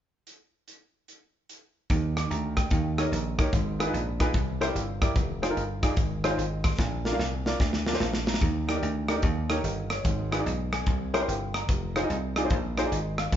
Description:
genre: uptempo gospel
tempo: 147 BPM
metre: 4/4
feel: swing 66% on 8ths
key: Eb major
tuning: A4 = 440 Hz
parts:
  - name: modern studio drum kit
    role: drums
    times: 0.3-13.4 s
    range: hi-hat, kick drum, rim click, snare drum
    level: -28 LUFS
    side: equal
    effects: none
  - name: warm grand piano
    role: accompaniment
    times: 1.9-13.4 s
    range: Ab2 to D6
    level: -30 LUFS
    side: equal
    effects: none
  - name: dry thumbed slap bass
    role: bass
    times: 1.9-13.4 s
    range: F1 to Eb2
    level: -31 LUFS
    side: equal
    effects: none
room: light reverb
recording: band playing live in one room, nothing above 7.5 kHz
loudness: -25 LUFS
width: side -10 dB against mid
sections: 0.3-1.9 A section; 1.9-8.4 B section; 8.4-13.4 C section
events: drum fill 6.8-8.4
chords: 0.3 N.C.; 1.9 Ebmaj7; 2.7 Eb7; 3.5 Abm6; 4.3 C7; 5.2 Fm7; 6.8 Bb; 8.4 Ebmaj7; 9.2 Eb7; 10.1 Abm6; 10.9 C7; 11.7 Fm7

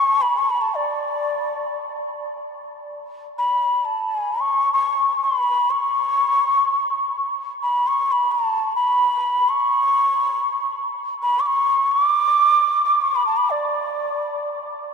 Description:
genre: indian classical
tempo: free time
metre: none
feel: none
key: unclear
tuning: A4 = 440 Hz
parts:
  - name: breathy mellow bansuri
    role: solo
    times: 0.0-14.6 s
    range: D5 to D6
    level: -18 LUFS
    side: equal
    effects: none
room: wet huge ambient reverb, RT60 7.5 s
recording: in a vast, echoing space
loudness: -18 LUFS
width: side -6 dB against mid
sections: 0.0-3.1 A section; 3.1-14.9 A section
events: none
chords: none

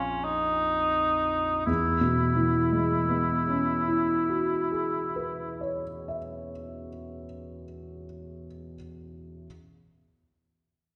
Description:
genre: classical, impressionist duo for cor anglais and grand piano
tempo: 43 BPM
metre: 4/4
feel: rubato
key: E lydian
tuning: A4 = 440 Hz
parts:
  - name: mellow cor anglais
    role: melody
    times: 0.0-5.8 s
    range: C#4 to E4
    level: -30 LUFS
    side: equal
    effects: none
  - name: dark concert grand piano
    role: accompaniment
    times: 0.0-9.5 s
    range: A#1 to E5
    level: -31 LUFS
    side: equal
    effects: none
room: wet scoring stage reverb, RT60 1.7 s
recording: heard from further back in the room, nothing above 10.4 kHz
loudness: -27 LUFS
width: mono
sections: 0.0-1.7 A section; 1.7-7.3 B section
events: slowing down 0.0-1.7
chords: 0.0 A#5; 1.7 E69

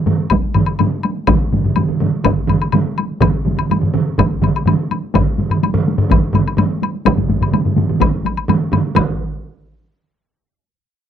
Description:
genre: japanese traditional, taiko drum ensemble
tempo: 125 BPM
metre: 4/4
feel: straight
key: none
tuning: none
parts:
  - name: taiko ensemble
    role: percussion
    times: 0.1-9.2 s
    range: none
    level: -20 LUFS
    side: left 1 dB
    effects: none
  - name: taiko ensemble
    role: percussion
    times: 0.1-9.4 s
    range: none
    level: -19 LUFS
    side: left 2 dB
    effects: none
  - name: taiko ensemble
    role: percussion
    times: 0.1-9.4 s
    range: none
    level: -18 LUFS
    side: right 5 dB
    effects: none
  - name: taiko ensemble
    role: percussion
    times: 0.3-9.2 s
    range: none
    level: -19 LUFS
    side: equal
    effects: none
  - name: woodblock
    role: percussion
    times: 0.3-9.2 s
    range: none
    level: -20 LUFS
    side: left 10 dB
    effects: none
room: light reverb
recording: dry, close 1970s-style studio recording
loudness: -14 LUFS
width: side -9 dB against mid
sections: 0.0-9.0 A section; 9.0-10.9 B section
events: speeding up 0.0-10.9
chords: none

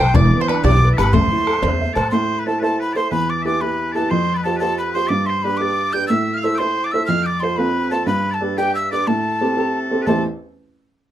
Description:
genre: celtic folk, Celtic jig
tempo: 121 BPM (dotted quarters)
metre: 6/8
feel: straight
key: A minor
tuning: A4 = 439 Hz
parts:
  - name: mellow hollow mid whistle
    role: melody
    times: 0.0-10.2 s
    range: G5 to G6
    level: -21 LUFS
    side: equal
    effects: none
  - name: bluegrass banjo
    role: second line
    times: 0.0-1.8 s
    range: B4 to D5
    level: -28 LUFS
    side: right 6 dB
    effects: none
  - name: loud bright bagpipes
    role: second line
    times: 0.0-10.2 s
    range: G4 to A5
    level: -26 LUFS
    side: left 2 dB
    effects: none
  - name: clear upright piano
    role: accompaniment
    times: 0.0-10.2 s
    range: A1 to E5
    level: -20 LUFS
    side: right 1 dB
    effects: none
  - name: upright bass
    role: bass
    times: 0.0-2.1 s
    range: E1 to A2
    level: -16 LUFS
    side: equal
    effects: none
  - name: bodhran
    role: percussion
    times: 0.1-2.0 s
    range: none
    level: -21 LUFS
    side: left 3 dB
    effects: none
room: light reverb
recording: close, detailed microphones, lossy compression artefacts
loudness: -16 LUFS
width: side -12 dB against mid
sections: 0.0-2.1 A section; 2.1-10.1 B section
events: none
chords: 0.1 Em7; 1.1 Am; 3.1 Em; 4.1 Fsus2; 5.1 G; 6.1 Am; 7.1 F; 8.1 G; 9.1 Am7

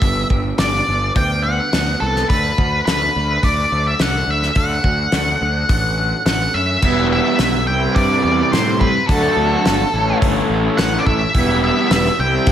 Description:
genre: indie rock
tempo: 106 BPM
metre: 4/4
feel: straight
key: unclear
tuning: A4 = 440 Hz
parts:
  - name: octave-fuzz lead guitar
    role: melody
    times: 0.0-12.5 s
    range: A4 to G5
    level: -19 LUFS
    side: equal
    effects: distortion, slapback echo
  - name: raw garage guitar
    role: riff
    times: 0.0-12.5 s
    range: G2 to F#4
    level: -24 LUFS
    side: left 7 dB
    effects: overdrive, slapback echo
  - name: raw garage guitar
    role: riff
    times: 0.0-12.5 s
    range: E3 to A4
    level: -22 LUFS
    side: right 6 dB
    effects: overdrive, wide subtle chorus, slapback echo
  - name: fuzz picked electric bass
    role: bass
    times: 0.0-12.5 s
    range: E1 to A2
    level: -21 LUFS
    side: equal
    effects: overdrive
  - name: loose indie drum kit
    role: drums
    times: 0.0-12.5 s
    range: crash cymbal, hi-hat, kick drum, snare drum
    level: -20 LUFS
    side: equal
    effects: none
room: moderate scoring stage reverb, RT60 1.6 s, small room ambience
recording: big arena sound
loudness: -14 LUFS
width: side -10 dB against mid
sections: 0.0-6.8 A section; 6.8-12.5 B section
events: none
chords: 0.0 G; 2.3 D; 6.8 Em; 7.7 C; 9.1 D; 9.9 A; 11.3 Em

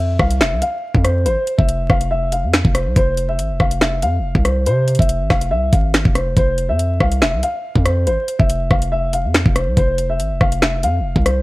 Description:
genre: hip hop, drill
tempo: 141 BPM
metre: 4/4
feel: half-time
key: F harmonic minor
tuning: A4 = 440 Hz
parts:
  - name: dark concert grand piano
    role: melody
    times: 0.0-11.4 s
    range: C5 to F5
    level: -20 LUFS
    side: left 1 dB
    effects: digital delay
  - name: hard-hitting 808-style bass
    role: bass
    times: 0.0-11.4 s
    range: E1 to C3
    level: -18 LUFS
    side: equal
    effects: none
  - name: drill drum kit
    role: drums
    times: 0.2-11.4 s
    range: finger snaps, hi-hat, kick drum, rim click, snare drum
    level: -16 LUFS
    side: equal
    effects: overdrive
room: digital ambience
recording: vinyl crackle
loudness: -14 LUFS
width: side -20 dB against mid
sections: 0.0-11.4 A section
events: none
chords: 0.0 F5

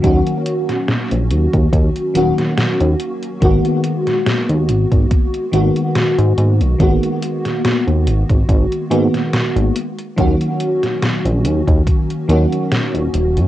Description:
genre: vaporwave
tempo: 71 BPM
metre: 4/4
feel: swing 54% on 16ths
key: G# minor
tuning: A4 = 440 Hz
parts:
  - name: FM electric piano with soft pad layer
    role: accompaniment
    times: 0.0-13.5 s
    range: D#3 to F#4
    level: -17 LUFS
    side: equal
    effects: ensemble chorus, cassette tape, tape echo
  - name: chorused synth bass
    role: bass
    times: 0.0-13.5 s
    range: D#1 to G#2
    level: -15 LUFS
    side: equal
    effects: none
  - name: detuned 8-bit digital drum machine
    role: drums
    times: 0.0-13.5 s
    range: hi-hat, snare drum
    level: -21 LUFS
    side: equal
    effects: cassette tape
  - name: electronic kick drum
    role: drums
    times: 0.0-12.1 s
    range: none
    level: -15 LUFS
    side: equal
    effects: cassette tape
room: light reverb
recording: home recording on cassette, nothing above 10.9 kHz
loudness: -14 LUFS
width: side -14 dB against mid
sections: 0.0-13.5 A section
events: none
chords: 0.0 D#m7; 3.4 G#m9; 9.8 D#m7

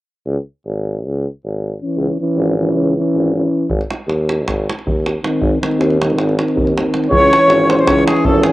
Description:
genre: balkan folk, Balkan brass band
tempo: 317 BPM (eighths)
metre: 9/8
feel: straight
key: C# harmonic minor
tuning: A4 = 441 Hz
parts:
  - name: warm tuba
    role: bass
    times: 0.3-8.5 s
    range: G#1 to D#2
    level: -18 LUFS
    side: equal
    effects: none
  - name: dark euphonium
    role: accompaniment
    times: 1.8-8.5 s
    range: B#3 to C#4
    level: -19 LUFS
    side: left 3 dB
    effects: cassette tape
  - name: mellow trombone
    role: accompaniment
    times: 1.8-8.5 s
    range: D#3 to E3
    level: -19 LUFS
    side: right 2 dB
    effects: cassette tape
  - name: davul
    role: percussion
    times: 3.7-8.5 s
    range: none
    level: -21 LUFS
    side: right 1 dB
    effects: none
  - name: mellow flugelhorn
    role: melody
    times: 7.1-8.5 s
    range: G#4 to C#5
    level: -13 LUFS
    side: equal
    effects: cassette tape
  - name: clear alto saxophone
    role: second line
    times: 7.2-8.5 s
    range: G#4 to C#5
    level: -18 LUFS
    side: left 1 dB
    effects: cassette tape
room: moderate spring reverb, RT60 1.7 s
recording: home recording on cassette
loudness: -14 LUFS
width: side -17 dB against mid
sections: 0.3-7.1 A section; 7.1-8.5 B section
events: none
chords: 0.3 C#m; 3.7 G#; 7.1 C#m

